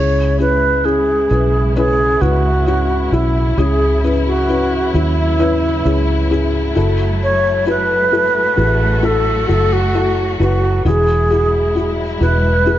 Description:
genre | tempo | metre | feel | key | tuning
pop ballad | 66 BPM | 4/4 | straight | C# minor | A4 = 439 Hz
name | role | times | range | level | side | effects
alto flute | melody | 0.0-12.8 s | E4 to C#5 | -17 LUFS | right 1 dB | none
felt-muted upright piano | accompaniment | 0.0-12.8 s | C#3 to B4 | -20 LUFS | left 4 dB | none
warm studio string section | sustained chords | 0.0-12.8 s | C#3 to F#4 | -24 LUFS | equal | none
vintage muted fingered electric bass | bass | 0.0-12.8 s | E1 to D#2 | -17 LUFS | right 1 dB | none
room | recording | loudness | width
light reverb, studio reverb | nothing above 7.6 kHz | -13 LUFS | side -12 dB against mid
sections
0.0-12.8 A section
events
none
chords
0.0 C#m; 6.8 F#m7; 10.9 Eadd9

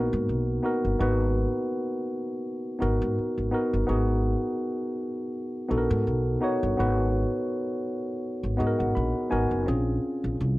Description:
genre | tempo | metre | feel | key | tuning
R&B, neo-soul | 83 BPM | 4/4 | swing 54% on 16ths | unclear | A4 = 442 Hz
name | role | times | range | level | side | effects
tine electric piano | accompaniment | 0.0-10.6 s | Bb3 to Cb6 | -26 LUFS | equal | overdrive
upright bass | bass | 0.0-10.6 s | Gb1 to Ab2 | -27 LUFS | equal | none
room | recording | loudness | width
small room ambience | dry, close 1970s-style studio recording | -24 LUFS | side -18 dB against mid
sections
0.0-9.7 A section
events
tine electric piano fill 8.2-9.7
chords
0.0 Abm9; 9.7 Bbm9

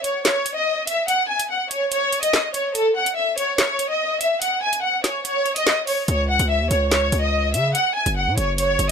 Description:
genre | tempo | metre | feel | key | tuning
hip hop, drill | 144 BPM | 4/4 | half-time | C# minor | A4 = 442 Hz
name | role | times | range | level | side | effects
warm studio violin section | melody | 0.0-8.9 s | A4 to G#5 | -20 LUFS | equal | digital delay
drill drum kit | drums | 0.0-8.9 s | handclaps, hi-hat, snare drum | -22 LUFS | right 1 dB | none
distorted 808-style bass | bass | 6.1-8.9 s | F#1 to C#3 | -22 LUFS | equal | distortion
room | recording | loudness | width
light reverb | none | -18 LUFS | side -6 dB against mid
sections
0.0-8.9 A section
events
break 0.0-6.1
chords
0.0 N.C.; 6.1 C#m; 7.7 F#5

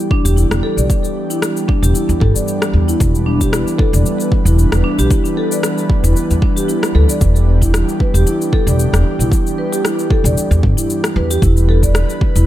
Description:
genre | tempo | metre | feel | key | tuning
organic downtempo | 114 BPM | 4/4 | swing 55% on 16ths | E minor | A4 = 440 Hz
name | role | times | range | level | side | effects
airy breathy pad | sustained chords | 0.0-12.5 s | E3 to B4 | -20 LUFS | right 1 dB | chorus, sidechain pumping
electronic cabasa and rim click | drums | 0.0-12.5 s | none | -22 LUFS | left 2 dB | overdrive, small room reverb
bronze singing bowl | texture | 0.0-12.5 s | D5 | -37 LUFS | left 4 dB | none
marimba with soft mallets | arpeggios | 0.1-12.5 s | D4 to D5 | -20 LUFS | equal | vintage 12-bit sampler grit, ping-pong delay
electronic kick drum | drums | 0.1-12.3 s | none | -15 LUFS | equal | overdrive, small room reverb
upright bass | bass | 0.2-12.4 s | E1 to E2 | -13 LUFS | equal | tube saturation, sidechain pumping
room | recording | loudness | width
light reverb, studio reverb | none | -12 LUFS | side -13 dB against mid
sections
0.0-12.5 A section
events
none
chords
0.0 Em7

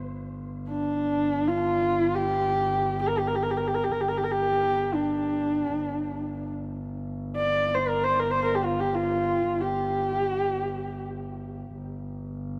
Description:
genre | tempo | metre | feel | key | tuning
mongolian traditional, Mongolian folk | free time | none | none | G yu mode | A4 = 440 Hz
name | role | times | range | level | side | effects
dark double bass | drone | 0.0-12.6 s | G1 | -35 LUFS | equal | none
dark horsehead fiddle | melody | 0.7-11.0 s | D4 to D5 | -27 LUFS | equal | none
room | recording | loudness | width
moderate huge ambient reverb, RT60 4.0 s | none | -27 LUFS | mono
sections
0.0-12.6 A section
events
none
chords
none

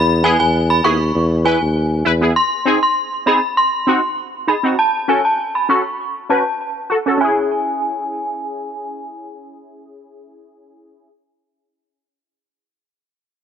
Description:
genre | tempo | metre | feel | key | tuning
dancehall | 99 BPM | 4/4 | straight | C# minor | A4 = 441 Hz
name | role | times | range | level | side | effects
synth chime | melody | 0.0-9.0 s | G#5 to C#6 | -18 LUFS | right 1 dB | ensemble chorus, low-pass filter, tape echo
warm tuba | bass | 0.0-2.3 s | D#2 to E2 | -16 LUFS | equal | none
synth brass stab | accompaniment | 0.2-11.1 s | B3 to B4 | -20 LUFS | left 1 dB | chorus, low-pass filter
room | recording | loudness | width
light reverb, small room ambience | none | -14 LUFS | side -8 dB against mid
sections
0.0-7.2 A section; 7.2-9.6 B section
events
filter sweep 0.0-7.2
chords
0.0 E; 2.4 G#; 4.8 F#m; 7.2 C#m

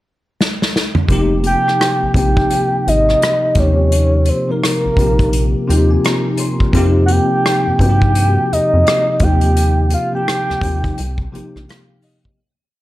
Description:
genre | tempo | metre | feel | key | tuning
R&B, neo-soul | 85 BPM | 4/4 | swing 61% on 16ths | unclear | A4 = 440 Hz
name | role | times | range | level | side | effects
unplugged drum kit | drums | 0.4-12.4 s | hi-hat, kick drum, rim click, snare drum, toms | -18 LUFS | equal | none
bell-like tine electric piano | accompaniment | 1.1-12.4 s | C3 to C6 | -18 LUFS | left 1 dB | ensemble chorus
rubbery square bass | bass | 1.1-11.7 s | F1 to G2 | -15 LUFS | equal | none
soft octave-layered synth lead | melody | 1.5-11.5 s | Bb4 to G5 | -17 LUFS | equal | chorus, tremolo
room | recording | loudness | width
studio reverb | none | -12 LUFS | side -16 dB against mid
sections
0.0-1.1 pickup bar; 1.1-12.4 verse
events
drum fill 0.4-1.1; tine electric piano fill 5.3-6.7, 11.0-12.4; fade-out 9.6-12.4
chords
0.0 N.C.; 1.1 F9sus4; 3.6 Eb7; 6.7 F9sus4; 9.2 Eb; 11.0 Cm7

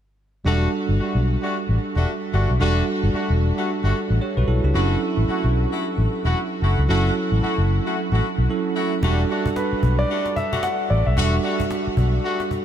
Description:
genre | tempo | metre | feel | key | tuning
R&B, new jack swing | 112 BPM | 4/4 | swing 60% on 16ths | E dorian | A4 = 440 Hz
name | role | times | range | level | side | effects
bell-like tine electric piano | accompaniment | 0.4-12.6 s | F#3 to C#5 | -24 LUFS | right 4 dB | fast stereo tremolo
warm horn section | stabs | 0.5-12.4 s | G3 to F#4 | -26 LUFS | left 2 dB | analog delay
vintage muted fingered electric bass | bass | 0.5-12.2 s | E1 to C#2 | -19 LUFS | left 1 dB | none
cajon | drums | 9.0-12.6 s | none | -31 LUFS | equal | none
warm grand piano | melody | 9.6-12.1 s | B4 to F#5 | -26 LUFS | left 1 dB | none
room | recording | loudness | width
moderate huge ambient reverb, RT60 8.5 s | dreamy mix soaked in reverb, faint mains hum | -19 LUFS | side -10 dB against mid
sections
0.5-9.0 A section; 9.0-12.6 B section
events
none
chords
0.5 Em11

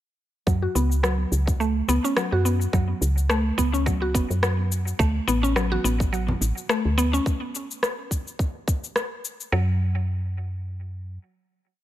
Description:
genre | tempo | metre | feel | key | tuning
organic downtempo | 106 BPM | 4/4 | swing 55% on 16ths | F# minor | A4 = 439 Hz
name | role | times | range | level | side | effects
mallet-like synth pluck | arpeggios | 0.5-9.8 s | F#3 to F#4 | -26 LUFS | equal | chorus, tape echo
woody FM bass | bass | 0.5-11.2 s | F#1 to F#2 | -24 LUFS | equal | sidechain pumping
electronic cabasa and rim click | drums | 0.5-9.5 s | none | -28 LUFS | left 1 dB | overdrive
electronic kick drum | drums | 0.5-8.8 s | none | -24 LUFS | equal | none
congas | percussion | 5.7-7.1 s | none | -32 LUFS | equal | none
room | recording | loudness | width
light reverb | none | -21 LUFS | side -13 dB against mid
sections
0.5-9.5 groove; 9.5-11.8 final note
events
filter sweep on synth pluck 0.5-7.3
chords
0.5 F#5; 5.0 D; 9.5 N.C.

